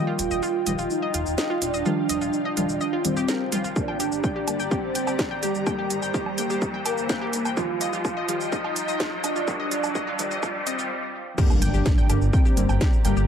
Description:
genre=melodic techno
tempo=126 BPM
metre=4/4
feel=straight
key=G minor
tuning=A4 = 440 Hz
part: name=mellow synth brass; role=melody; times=0.0-13.3 s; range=G3 to F4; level=-28 LUFS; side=right 2 dB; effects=chorus, sidechain pumping, dub echo
part: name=evolving wavetable pad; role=sustained chords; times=0.0-13.3 s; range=F4 to Bb5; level=-34 LUFS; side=left 2 dB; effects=chorus, built-in reverb, sidechain pumping
part: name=synth brass stab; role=stabs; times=0.0-13.3 s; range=D3 to Bb3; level=-32 LUFS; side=left 2 dB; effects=chorus, sidechain pumping, dub echo
part: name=riser and impact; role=sound effects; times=0.2-13.3 s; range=none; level=-33 LUFS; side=equal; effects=none
part: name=analog pluck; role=arpeggios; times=0.1-13.2 s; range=F4 to G5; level=-31 LUFS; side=left 2 dB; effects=chorus, vintage 12-bit sampler grit, sidechain pumping, dub echo
part: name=swelling detuned saw bass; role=bass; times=0.2-13.3 s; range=Eb1 to G1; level=-27 LUFS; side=equal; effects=sidechain pumping
part: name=techno drum kit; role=drums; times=0.2-13.3 s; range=crash cymbal, hi-hat, shaker, snare drum, woodblock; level=-30 LUFS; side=right 1 dB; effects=dub echo
part: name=electronic kick drum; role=drums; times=3.8-12.9 s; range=none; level=-23 LUFS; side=equal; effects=none
room=moderate spring reverb, RT60 2.5 s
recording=echo-heavy mix, high-pass filter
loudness=-22 LUFS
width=side -8 dB against mid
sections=0.0-11.4 A section; 11.4-13.3 B section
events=build-up 0.0-11.4; filter sweep on synth stab 0.0-11.4; filter sweep 0.0-11.4; riser 0.2-10.9; stop 10.9-11.4; drop 11.4-13.3; impact 11.4-13.3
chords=0.0 Ebadd9; 3.8 Gm; 7.6 Ebadd9; 11.4 Gm

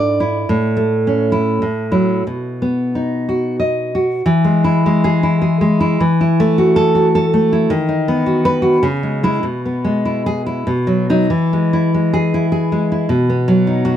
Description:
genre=romantic piece for solo classical guitar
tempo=86-111 BPM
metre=3/4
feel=rubato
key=E major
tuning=A4 = 442 Hz
part: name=nylon-string guitar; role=solo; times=0.0-14.0 s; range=G#2 to D#5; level=-13 LUFS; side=equal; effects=none
room=small room ambience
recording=dry, close 1970s-style studio recording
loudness=-13 LUFS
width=side -10 dB against mid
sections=0.0-4.2 A section; 4.2-14.0 B section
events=none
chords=0.5 A; 1.6 F#m7/A; 2.3 B; 4.2 E; 6.0 F#m7/E; 7.7 B/D#; 8.8 C#m; 9.5 E/B; 10.7 B; 11.3 E; 13.1 B

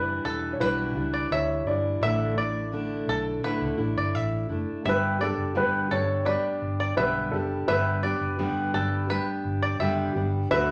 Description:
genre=acoustic pop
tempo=85 BPM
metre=4/4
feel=straight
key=unclear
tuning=A4 = 441 Hz
part: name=dark upright piano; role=melody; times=0.0-10.7 s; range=A4 to D5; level=-30 LUFS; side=equal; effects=none
part: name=fingerpicked steel-string acoustic guitar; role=accompaniment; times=0.0-10.7 s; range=E2 to G4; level=-32 LUFS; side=equal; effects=none
part: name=vintage muted fingered electric bass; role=bass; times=0.0-10.7 s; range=E1 to D2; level=-33 LUFS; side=equal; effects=none
part: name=bluegrass banjo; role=arpeggios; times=0.2-10.7 s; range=A4 to E5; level=-32 LUFS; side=equal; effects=none
room=wet large studio reverb, RT60 0.9 s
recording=none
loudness=-27 LUFS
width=mono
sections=0.0-4.9 A section; 4.9-10.7 B section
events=none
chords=0.0 Em7; 2.0 Asus4; 4.9 G

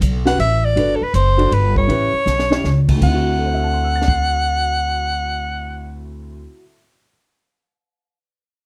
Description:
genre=jazz, small-group swing and bop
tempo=160 BPM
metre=3/4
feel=swing 66% on 8ths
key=D mixolydian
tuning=A4 = 440 Hz
part: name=upright bass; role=bass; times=0.0-6.4 s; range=F#1 to D2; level=-22 LUFS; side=equal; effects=none
part: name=compact cocktail drum kit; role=drums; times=0.0-4.1 s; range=crash cymbal, hi-hat, kick drum, ride cymbal, snare drum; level=-26 LUFS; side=equal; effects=none
part: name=warm soprano saxophone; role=melody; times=0.3-6.0 s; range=A4 to F#5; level=-22 LUFS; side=equal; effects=none
part: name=clear upright piano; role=accompaniment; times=0.3-7.1 s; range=D2 to C7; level=-26 LUFS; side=equal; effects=none
room=light reverb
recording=dark, warm production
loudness=-17 LUFS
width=mono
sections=0.8-3.0 A section; 3.0-5.3 B section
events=drum fill 2.3-2.6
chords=0.4 A5; 0.8 Gmaj7; 1.9 A7; 3.0 D9

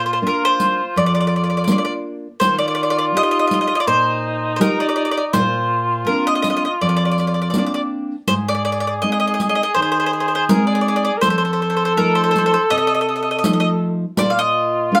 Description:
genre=italian folk, Italian serenade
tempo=82 BPM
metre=4/4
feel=straight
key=unclear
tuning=A4 = 439 Hz
part: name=mandolin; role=melody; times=0.0-15.0 s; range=Bb4 to F5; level=-21 LUFS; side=equal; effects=none
part: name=mellow cor anglais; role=second line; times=0.0-15.0 s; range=Eb4 to Bb4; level=-24 LUFS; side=equal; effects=none
part: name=nylon-string guitar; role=accompaniment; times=0.0-15.0 s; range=F2 to G4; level=-24 LUFS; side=equal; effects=none
part: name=riq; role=percussion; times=0.6-14.5 s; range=none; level=-24 LUFS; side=equal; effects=none
room=moderate small room ambience, RT60 0.5 s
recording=band playing live in one room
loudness=-18 LUFS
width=mono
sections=0.0-15.0 A section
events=none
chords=0.0 Bb; 2.4 Ebadd9; 5.3 Bbadd9; 8.3 Ab; 11.2 F7; 14.2 Bb5

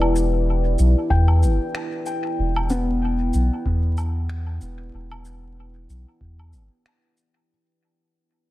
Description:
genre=ambient dub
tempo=94 BPM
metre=4/4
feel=swing 57% on 16ths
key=E minor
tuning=A4 = 440 Hz
part: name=deep dark ambient pad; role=sustained chords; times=0.0-7.5 s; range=E4 to G5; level=-26 LUFS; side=left 1 dB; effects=chorus, built-in reverb, vintage 12-bit sampler grit
part: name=felt-muted upright piano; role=arpeggios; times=0.0-7.5 s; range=B3 to G5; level=-28 LUFS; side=left 2 dB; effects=tape echo
part: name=soft dub sub bass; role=bass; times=0.0-6.7 s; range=E1 to E2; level=-20 LUFS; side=equal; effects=none
part: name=woodblock, shaker and finger snaps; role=drums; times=0.0-7.3 s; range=none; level=-33 LUFS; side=equal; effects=dub echo
part: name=electronic kick drum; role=drums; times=1.1-6.4 s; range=none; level=-27 LUFS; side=equal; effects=none
room=light reverb, small room ambience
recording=echo-heavy mix, vinyl crackle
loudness=-19 LUFS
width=side -16 dB against mid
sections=0.0-7.5 A section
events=fade-out 0.0-7.5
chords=0.0 Em7

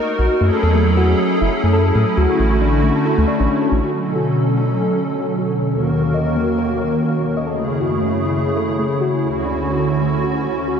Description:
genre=IDM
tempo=136 BPM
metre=4/4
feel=swing 56% on 16ths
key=B dorian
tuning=A4 = 440 Hz
part: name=hollow soft pad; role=sustained chords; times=0.0-10.8 s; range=D2 to A#4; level=-18 LUFS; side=right 1 dB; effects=ensemble chorus
part: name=harp-like synth pluck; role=arpeggios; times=0.2-10.7 s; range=A3 to D#5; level=-22 LUFS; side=left 3 dB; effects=chorus, tape echo
part: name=round analog bass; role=bass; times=0.2-3.8 s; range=F#1 to A2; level=-17 LUFS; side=equal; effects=tube saturation
part: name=bubbling stepped-filter texture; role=texture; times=4.5-10.8 s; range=C#4 to C#5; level=-29 LUFS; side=equal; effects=chorus, built-in reverb
room=wet huge ambient reverb, RT60 7.6 s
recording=dreamy mix soaked in reverb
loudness=-15 LUFS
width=side -7 dB against mid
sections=0.0-3.9 A section; 3.9-10.8 B section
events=filter sweep on synth pluck 3.9-10.8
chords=0.4 F#m7; 2.2 Dmaj7; 3.9 Bm7; 5.7 D#m; 7.5 F#m7; 9.2 Dmaj7

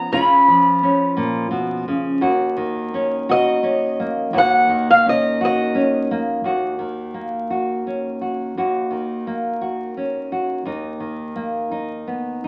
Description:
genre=acoustic folk-pop ballad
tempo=57 BPM (dotted quarters)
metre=6/8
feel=straight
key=Eb minor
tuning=A4 = 437 Hz
part: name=picked acoustic archtop guitar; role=melody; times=0.0-6.2 s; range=Eb5 to Cb6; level=-18 LUFS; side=equal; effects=none
part: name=nylon-string guitar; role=accompaniment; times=0.0-12.5 s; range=Eb2 to Gb4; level=-23 LUFS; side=equal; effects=none
room=wet studio reverb, RT60 0.9 s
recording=very old 78 rpm record, vinyl crackle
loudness=-20 LUFS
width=mono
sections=0.0-6.4 A section; 6.4-12.5 B section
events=none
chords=0.0 Db7; 2.2 Ebm7; 10.7 Bmaj7/D#

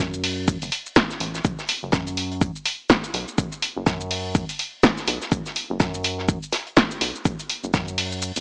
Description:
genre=minimal techno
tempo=124 BPM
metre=4/4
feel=swing 59% on 16ths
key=F# minor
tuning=A4 = 440 Hz
part: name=rubbery square bass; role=bass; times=0.0-8.4 s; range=E1 to F#2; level=-29 LUFS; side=equal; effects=sidechain pumping
part: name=damped 70s drum kit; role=drums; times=0.0-8.4 s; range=hi-hat, shaker, snare drum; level=-32 LUFS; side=equal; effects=sidechain pumping on hats, high-pass filter on hats, high-pass filter on snare, sidechain pumping on perc, high-pass filter on perc, high-pass filter on room
part: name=electronic kick drum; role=drums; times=0.0-7.9 s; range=none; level=-23 LUFS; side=equal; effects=none
part: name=punchy analog drum machine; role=drums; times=0.1-8.4 s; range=hi-hat, shaker, snare drum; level=-21 LUFS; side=equal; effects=none
room=light reverb, small room ambience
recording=dry, gritty hardware recording, small speaker sound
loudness=-21 LUFS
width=side -32 dB against mid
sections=0.0-8.4 A section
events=kick drops out 8.2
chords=none

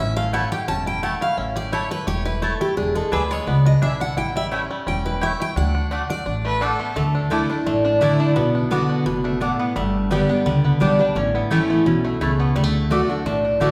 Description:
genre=bluegrass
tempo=172 BPM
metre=4/4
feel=swing 53% on 8ths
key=D major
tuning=A4 = 437 Hz
part: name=bluegrass banjo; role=melody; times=0.0-13.7 s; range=G3 to G4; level=-32 LUFS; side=equal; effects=none
part: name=picked steel-string acoustic guitar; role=accompaniment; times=0.0-13.7 s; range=G2 to A5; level=-24 LUFS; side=equal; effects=none
part: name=upright bass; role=bass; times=0.0-13.7 s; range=E1 to D2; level=-26 LUFS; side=equal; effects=none
part: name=mandolin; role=stabs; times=0.3-13.7 s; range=A3 to B5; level=-31 LUFS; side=equal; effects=none
part: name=lap resonator guitar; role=melody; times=6.5-13.7 s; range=G3 to E4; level=-26 LUFS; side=equal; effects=none
part: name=clear fiddle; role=second line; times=6.5-7.0 s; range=A4 to B4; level=-29 LUFS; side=equal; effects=none
room=wet recital hall reverb, RT60 1.6 s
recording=recorded in a church or concert hall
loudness=-21 LUFS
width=mono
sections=0.0-7.0 A section; 7.0-13.7 B section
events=steel-string acoustic guitar solo 0.0-7.0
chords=0.0 A; 2.8 E7; 4.2 A7; 5.6 D; 7.0 Dsus2; 8.4 Bm; 9.8 G; 11.2 A; 12.6 D

